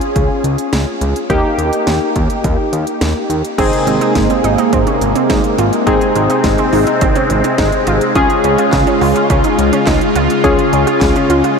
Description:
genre	synth-pop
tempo	105 BPM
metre	4/4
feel	straight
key	Ab major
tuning	A4 = 440 Hz
part	warm analog keys	accompaniment	0.0-11.6 s	Bb3 to Ab4	-16 LUFS	left 2 dB	chorus
part	house drum kit	drums	0.0-11.6 s	crash cymbal, handclaps, hi-hat, kick drum, snare drum	-19 LUFS	equal	none
part	fat analog bass	bass	0.2-11.4 s	Ab1 to Eb2	-18 LUFS	equal	none
part	phased analog pad	sustained chords	3.6-11.6 s	C3 to F4	-16 LUFS	equal	phaser, chorus
part	analog pluck	arpeggios	3.6-11.5 s	C4 to F4	-19 LUFS	right 6 dB	chorus, tape echo
room	wet huge ambient reverb, RT60 8.3 s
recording	dreamy mix soaked in reverb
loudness	-11 LUFS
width	side -5 dB against mid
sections	0.0-3.6 A section; 3.6-11.6 B section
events	none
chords	0.0 Db; 1.3 Eb; 3.6 Abadd9; 8.2 Db

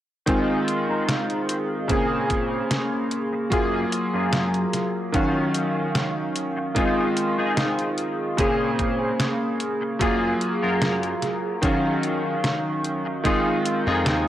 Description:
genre	vaporwave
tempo	74 BPM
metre	4/4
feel	straight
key	unclear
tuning	A4 = 438 Hz
part	clear electric grand piano	accompaniment	0.3-14.3 s	Db3 to F5	-23 LUFS	equal	analog chorus, analog delay
part	warbly tape-like pad	sustained chords	0.9-14.3 s	Eb3 to Eb6	-31 LUFS	right 1 dB	chorus, built-in reverb, vintage 12-bit sampler grit
part	clean electric guitar	riff	0.3-14.3 s	Gb2 to Bb4	-28 LUFS	left 2 dB	ensemble chorus, low-pass filter, analog delay
part	detuned 8-bit digital drum machine	drums	0.3-14.2 s	hi-hat, snare drum	-26 LUFS	equal	none
part	electronic kick drum	drums	0.3-13.4 s	none	-27 LUFS	equal	none
part	glassy slap bass	bass	13.9-14.2 s	Eb2 to F2	-25 LUFS	equal	tube saturation
room	light reverb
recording	dry, gritty hardware recording, transformer saturation, cassette tape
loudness	-21 LUFS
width	side -12 dB against mid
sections	0.3-14.3 A section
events	filter sweep on clean electric guitar 0.3-14.3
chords	0.3 Fm7; 1.9 Bbm9; 3.5 Gbmaj9; 5.1 Ebm9; 6.8 Fm7; 8.4 Bbm9; 10.0 Gbmaj9; 11.6 Ebm9; 13.2 Fm7

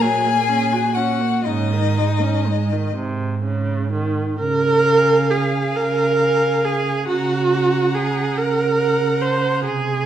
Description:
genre	classical, slow romantic movement for string quartet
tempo	39-47 BPM (dotted quarters)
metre	6/8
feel	rubato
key	Db major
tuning	A4 = 439 Hz
part	rich violin	melody	0.0-9.6 s	Eb5 to Bb5	-25 LUFS	left 8 dB	none
part	warm violin	second line	0.0-9.6 s	Eb4 to Gb5	-28 LUFS	left 3 dB	none
part	rich viola	accompaniment	0.0-10.1 s	C3 to C5	-19 LUFS	right 2 dB	none
part	dark cello	bass	0.0-10.1 s	Ab2 to Db3	-22 LUFS	right 4 dB	none
room	moderate recital hall reverb, RT60 1.3 s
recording	none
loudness	-16 LUFS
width	side -10 dB against mid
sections	0.0-4.4 A section; 4.4-10.1 B section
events	none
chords	0.0 Gb/Bb; 1.5 Absus4; 3.0 Ab; 4.4 Db; 7.1 Gb/Db

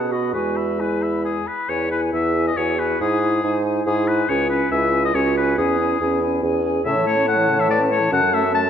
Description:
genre	quick classical-period movement for wind quintet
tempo	140 BPM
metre	3/4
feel	rubato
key	E major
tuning	A4 = 440 Hz
part	silver concert flute	melody	0.0-8.7 s	G#5 to B5	-28 LUFS	left 8 dB	none
part	clear oboe	second line	0.0-8.7 s	G#4 to A5	-22 LUFS	left 4 dB	none
part	dark French horn	accompaniment	0.0-8.7 s	C#3 to E4	-27 LUFS	equal	none
part	mellow clarinet	accompaniment	0.0-8.7 s	D#4 to C#5	-26 LUFS	right 5 dB	none
part	warm bassoon	bass	0.0-8.7 s	C#2 to B2	-22 LUFS	right 1 dB	none
room	moderate scoring stage reverb, RT60 1.7 s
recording	dark, warm production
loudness	-17 LUFS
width	side -8 dB against mid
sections	0.0-1.7 A section; 1.7-8.7 B section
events	none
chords	0.3 E; 3.0 E/G#; 4.3 C#m; 5.6 C#m/E; 6.9 A; 8.1 F#m

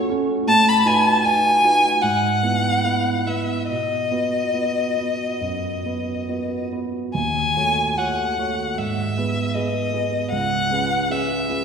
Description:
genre	classical, romantic duo for violin and grand piano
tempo	68-80 BPM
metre	4/4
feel	rubato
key	unclear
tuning	A4 = 439 Hz
part	rich violin	melody	0.0-11.6 s	D#5 to B5	-20 LUFS	left 1 dB	none
part	dark baby grand piano	accompaniment	0.0-11.6 s	C#2 to C#5	-23 LUFS	right 3 dB	none
room	wet concert hall reverb, RT60 1.8 s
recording	heard from further back in the room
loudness	-18 LUFS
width	side -6 dB against mid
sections	0.0-11.6 A section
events	none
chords	0.5 B7/A; 2.0 E/G#; 3.7 B; 7.1 D#m7b5; 8.8 G#m; 10.3 C#m7

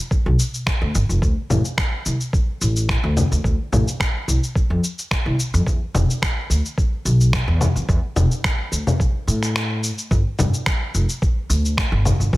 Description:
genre	organic downtempo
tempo	108 BPM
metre	4/4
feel	straight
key	G mixolydian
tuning	A4 = 440 Hz
part	electronic cabasa, finger snaps and congas	drums	0.1-12.4 s	none	-23 LUFS	left 1 dB	none
part	electronic kick drum	drums	0.1-12.4 s	none	-20 LUFS	equal	none
part	upright bass	bass	0.3-12.4 s	E1 to A2	-19 LUFS	equal	sidechain pumping
room	little or no reverb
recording	none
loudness	-18 LUFS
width	side -19 dB against mid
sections	0.0-12.4 A section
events	break 9.6-10.1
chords	none

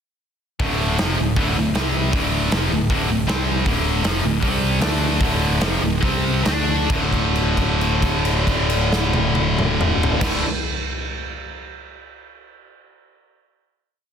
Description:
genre	hard rock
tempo	133-158 BPM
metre	4/4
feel	straight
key	D minor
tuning	A4 = 440 Hz
part	heavy high-gain guitar	riff	0.6-10.4 s	D2 to D4	-20 LUFS	equal	distortion
part	picked electric bass	bass	0.6-10.4 s	D1 to D2	-23 LUFS	equal	none
part	big rock drum kit	drums	0.6-10.3 s	crash cymbal, hi-hat, kick drum, snare drum, toms	-23 LUFS	equal	soft clipping on snare
room	light reverb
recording	dense, heavily limited modern master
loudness	-17 LUFS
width	side -8 dB against mid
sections	0.6-6.9 riff; 6.9-10.5 final chord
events	slowing down 3.7-6.9; held note 6.9-10.2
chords	0.6 Dm; 1.8 C5; 2.1 Dm; 3.3 C5; 3.7 Dm; 4.4 C5; 4.8 Dm; 6.0 C5; 6.5 D5

